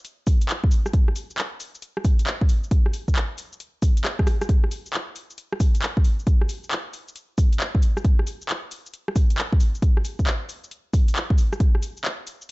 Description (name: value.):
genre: UK garage.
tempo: 135 BPM.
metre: 4/4.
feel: swing 66% on 16ths.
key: none.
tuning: none.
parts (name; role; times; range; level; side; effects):
house drum kit; drums; 0.0-12.5 s; cabasa, handclaps, hi-hat, rim click; -29 LUFS; equal; overdrive, studio reverb.
electronic kick drum; drums; 0.3-11.7 s; none; -19 LUFS; equal; overdrive, studio reverb.
room: digital ambience.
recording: dark, warm production, nothing above 7.9 kHz.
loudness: -20 LUFS.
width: side -22 dB against mid.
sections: 0.0-12.5 A section.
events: drum fill 4.0-4.5.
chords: none.